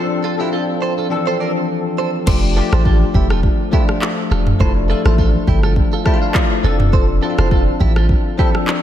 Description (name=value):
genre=afrobeats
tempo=103 BPM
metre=4/4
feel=swing 55% on 16ths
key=F major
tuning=A4 = 440 Hz
part: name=bell-like tine electric piano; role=accompaniment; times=0.0-8.8 s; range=E3 to A5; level=-19 LUFS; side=left 4 dB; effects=ensemble chorus
part: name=direct-recorded clean electric guitar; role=riff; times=0.0-8.5 s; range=E4 to D5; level=-24 LUFS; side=right 7 dB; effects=lush chorus, diffuse ambient delay
part: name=punchy sub bass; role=bass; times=2.3-8.1 s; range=E1 to A1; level=-16 LUFS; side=equal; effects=none
part: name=afro-pop drum kit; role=drums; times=2.3-8.8 s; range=crash cymbal, handclaps, kick drum, rim click, toms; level=-16 LUFS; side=equal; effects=none
room=light reverb, digital ambience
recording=none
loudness=-13 LUFS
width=side -11 dB against mid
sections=0.0-2.3 A section; 2.3-8.8 B section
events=hi-hats muted 2.3-8.8; tine electric piano fill 5.8-6.9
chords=0.0 Dm7/F; 2.3 F69; 6.6 Dm7